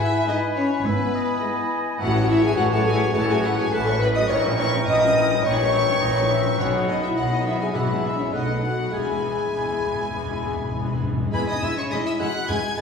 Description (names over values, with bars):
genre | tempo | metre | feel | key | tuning
quick classical-period movement for symphony orchestra | 104 BPM | 4/4 | straight | E major | A4 = 439 Hz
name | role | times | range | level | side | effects
rich studio violin section | melody | 0.0-12.8 s | B4 to G#6 | -32 LUFS | left 3 dB | none
clear oboe | second line | 0.0-12.8 s | A#4 to B5 | -31 LUFS | equal | none
clear studio violin section | second line | 0.0-12.8 s | B4 to D#6 | -33 LUFS | left 2 dB | none
mellow hollow silver concert flute | second line | 0.0-12.8 s | B4 to B5 | -33 LUFS | left 1 dB | none
warm clarinet | second line | 0.0-12.8 s | E4 to G#5 | -32 LUFS | left 2 dB | none
mellow bassoon | accompaniment | 0.0-12.8 s | E3 to A3 | -32 LUFS | left 2 dB | none
warm French horn section | sustained chords | 0.0-12.8 s | B3 to D#5 | -24 LUFS | left 2 dB | none
rich studio cello section | bass | 0.0-12.8 s | E2 to B2 | -30 LUFS | right 2 dB | none
rich studio double bass section | bass | 0.0-12.8 s | E1 to B1 | -29 LUFS | right 1 dB | none
rich studio viola section | accompaniment | 0.3-12.8 s | D#3 to F#4 | -30 LUFS | left 1 dB | none
timpani | percussion | 6.6-11.3 s | E2 to B2 | -30 LUFS | left 2 dB | none
room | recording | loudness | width
wet scoring stage reverb, RT60 1.4 s | heard from further back in the room | -20 LUFS | side -6 dB against mid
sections
0.0-11.3 A section; 11.3-12.8 A section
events
timpani fill 8.9-11.3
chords
0.0 E/G#; 2.0 F#m7/A; 4.3 A#dim7; 6.6 B; 7.7 E/B; 8.3 B7; 8.9 E